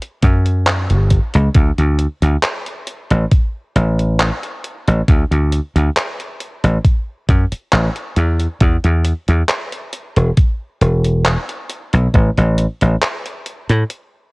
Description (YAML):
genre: vaporwave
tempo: 68 BPM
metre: 4/4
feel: straight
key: unclear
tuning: A4 = 440 Hz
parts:
  - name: detuned 8-bit digital drum machine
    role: drums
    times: 0.0-14.1 s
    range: handclaps, hi-hat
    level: -21 LUFS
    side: equal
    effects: none
  - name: dry thumbed slap bass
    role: bass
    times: 0.2-13.8 s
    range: E1 to A2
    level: -13 LUFS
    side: equal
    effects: tube saturation
  - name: electronic kick drum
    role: drums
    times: 0.2-12.3 s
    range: none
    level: -13 LUFS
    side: equal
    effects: none
room: little or no reverb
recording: worn, warbling old tape, cassette tape, warbly pitch drift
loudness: -14 LUFS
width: side -29 dB against mid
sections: 0.0-14.3 A section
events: break 13.9-14.3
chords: none